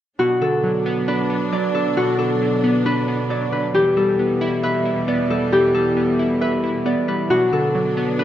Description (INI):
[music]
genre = hip hop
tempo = 135 BPM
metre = 4/4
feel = half-time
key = unclear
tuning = A4 = 438 Hz
[part]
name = concert harp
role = melody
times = 0.2-8.2 s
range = F#4 to D5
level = -19 LUFS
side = left 1 dB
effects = low-pass filter, slapback echo
[part]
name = glassy digital keys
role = accompaniment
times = 0.2-8.2 s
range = B2 to E5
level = -22 LUFS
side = right 1 dB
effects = chorus, low-pass filter
[part]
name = rich symphonic string section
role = sustained chords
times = 0.2-8.2 s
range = E2 to D4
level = -26 LUFS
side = equal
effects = none
[sound]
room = light reverb, small room ambience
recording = rough home demo mix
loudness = -17 LUFS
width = side -11 dB against mid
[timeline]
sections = 0.2-8.2 A section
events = none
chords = 0.2 Bm; 3.7 Em; 7.3 Bm